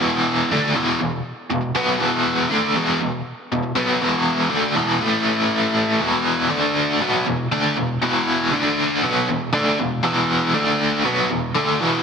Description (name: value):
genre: rock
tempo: 120 BPM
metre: 4/4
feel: straight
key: unclear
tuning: A4 = 440 Hz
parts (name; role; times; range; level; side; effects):
- biting overdriven guitar; solo; 0.0-12.0 s; E2 to D4; -17 LUFS; equal; tremolo, slapback echo
room: light reverb, digital ambience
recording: heavily compressed radio sound, multiband compression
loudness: -17 LUFS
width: side -6 dB against mid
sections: 0.0-6.0 A section; 6.0-12.0 B section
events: none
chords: 0.0 E5; 5.0 A5; 6.0 E5; 6.5 D5; 7.0 E5; 8.5 D5; 9.0 E5; 10.5 D5; 11.0 E5